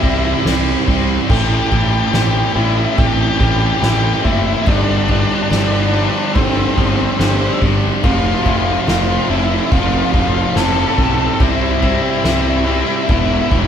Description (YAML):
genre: post-rock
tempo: 71 BPM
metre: 4/4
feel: straight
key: A minor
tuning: A4 = 445 Hz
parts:
  - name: octave-fuzz lead guitar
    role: melody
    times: 0.0-13.6 s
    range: C4 to A4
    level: -20 LUFS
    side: left 2 dB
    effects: distortion
  - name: rich studio string section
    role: sustained chords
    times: 0.0-13.7 s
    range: E4 to C6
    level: -32 LUFS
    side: left 1 dB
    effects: none
  - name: kalimba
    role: arpeggios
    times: 0.0-13.7 s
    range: B3 to E5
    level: -31 LUFS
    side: right 5 dB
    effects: none
  - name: twangy electric guitar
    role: arpeggios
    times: 0.0-13.7 s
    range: G2 to E4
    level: -27 LUFS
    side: left 1 dB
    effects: none
  - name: overdriven semi-hollow guitar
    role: riff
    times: 0.0-13.7 s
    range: E2 to C4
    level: -22 LUFS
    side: right 5 dB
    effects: none
  - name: tight distorted guitar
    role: riff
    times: 0.0-13.7 s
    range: E2 to C4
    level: -22 LUFS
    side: left 8 dB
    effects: distortion
  - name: fuzz fingered electric bass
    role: bass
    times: 0.0-13.7 s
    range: E1 to C2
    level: -19 LUFS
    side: equal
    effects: overdrive
  - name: soft-mallet drum kit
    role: drums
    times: 0.0-13.7 s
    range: crash cymbal, kick drum, ride cymbal, snare drum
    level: -18 LUFS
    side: right 1 dB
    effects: none
room: moderate stone room reverb, RT60 1.3 s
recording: band playing live in one room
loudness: -13 LUFS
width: side -8 dB against mid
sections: 0.0-13.7 A section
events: none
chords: 0.0 C; 1.3 Am7; 4.7 G7sus4; 8.0 Fmaj7; 11.4 C; 13.1 Em